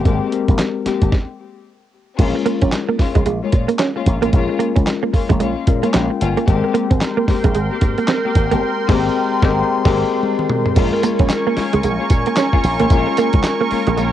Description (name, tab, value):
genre	R&B, new jack swing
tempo	112 BPM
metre	4/4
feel	swing 60% on 16ths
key	Bb dorian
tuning	A4 = 435 Hz
part	tine electric piano	accompaniment	0.0-14.1 s	Ab3 to Ab5	-22 LUFS	left 8 dB	medium stereo tremolo, cassette tape
part	warm studio string section	stabs	0.0-14.1 s	Ab3 to G4	-25 LUFS	left 8 dB	cassette tape
part	slap bass with an envelope filter	bass	0.0-14.1 s	G1 to Bb2	-20 LUFS	right 1 dB	none
part	dusty soul sampler-style drum kit	drums	0.1-14.1 s	crash cymbal, handclaps, hi-hat, kick drum, snare drum, tambourine, toms	-17 LUFS	right 1 dB	cassette tape
part	direct-recorded clean electric guitar	riff	2.4-14.1 s	Ab3 to Db4	-19 LUFS	right 7 dB	ensemble chorus, cassette tape
part	phased analog pad	sustained chords	6.8-14.1 s	Bb4 to Db6	-21 LUFS	right 2 dB	phaser, chorus, cassette tape
room	little or no reverb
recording	home recording on cassette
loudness	-14 LUFS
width	side -11 dB against mid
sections	0.0-2.2 A section; 2.2-10.8 B section; 10.8-14.1 C section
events	stop 1.1-2.2; tine electric piano fill 5.4-6.5; band accent 8.6-10.8; drum fill 10.2-10.8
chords	0.0 Abmaj9; 2.2 Bbm7; 6.5 Abmaj9; 10.8 Bbm7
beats	| 0.05 0.58 1.12 1.66 | 2.19 2.73 3.26 3.80 | 4.33 4.87 5.41 5.94 | 6.48 7.01 7.55 8.08 | 8.62 9.15 9.69 10.23 | 10.76 11.30 11.83 12.37 | 12.90 13.44 13.98